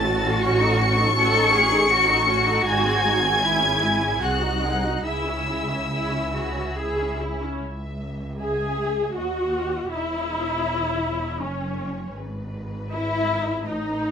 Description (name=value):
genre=classical, slow romantic movement for string orchestra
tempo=69-82 BPM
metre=3/4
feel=rubato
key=C# minor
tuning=A4 = 440 Hz
part: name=warm symphonic violin section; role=melody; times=0.0-14.1 s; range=B4 to C#7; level=-24 LUFS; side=left 3 dB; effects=none
part: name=rich symphonic violin section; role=second line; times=0.0-14.1 s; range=C#5 to C#6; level=-28 LUFS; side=right 1 dB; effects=none
part: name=warm symphonic viola section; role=accompaniment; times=0.0-14.1 s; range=G#3 to A4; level=-26 LUFS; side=equal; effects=none
part: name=dark symphonic double bass section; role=bass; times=0.0-14.1 s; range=E1 to D#2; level=-28 LUFS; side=right 1 dB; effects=none
part: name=warm symphonic cello section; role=bass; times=0.0-14.1 s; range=C#2 to A4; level=-28 LUFS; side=right 1 dB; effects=none
room=light reverb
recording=none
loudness=-20 LUFS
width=side -7 dB against mid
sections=0.0-7.6 A section; 7.6-14.1 B section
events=none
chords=0.4 D#m7b5/A; 2.7 G#; 3.4 C#m/G#; 4.2 G#7/B#; 5.0 C#m; 9.9 C#m/E; 12.2 G#m